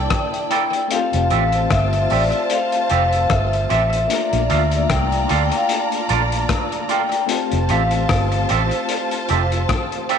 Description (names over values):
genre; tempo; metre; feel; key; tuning
lovers rock reggae; 75 BPM; 4/4; swing 56% on 16ths; F major; A4 = 441 Hz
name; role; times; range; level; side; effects
vibraphone with medium hard mallets; melody; 0.0-8.5 s; D5 to A5; -22 LUFS; left 3 dB; tape echo
warm studio string section; second line; 0.0-10.2 s; E4 to Bb5; -25 LUFS; right 2 dB; tape echo
overdriven tine electric piano; accompaniment; 0.0-10.2 s; A3 to D5; -27 LUFS; left 12 dB; medium tremolo
vintage muted fingered electric bass; bass; 0.0-9.6 s; F1 to D2; -20 LUFS; right 1 dB; none
cloth-damped thuddy drum kit; drums; 0.1-10.2 s; hi-hat, kick drum, rim click; -24 LUFS; left 4 dB; tape echo
twangy electric guitar; stabs; 0.5-10.2 s; Bb3 to F5; -24 LUFS; right 13 dB; spring reverb
room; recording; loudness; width
moderate echo chamber reverb, RT60 1.7 s, small room ambience; 1960s-style stereo with parts hard left and right, nothing above 10.7 kHz; -16 LUFS; side -7 dB against mid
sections
0.0-10.2 A section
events
none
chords
0.0 C13; 0.9 Fmaj9; 4.1 Bbmaj7; 7.3 Fmaj9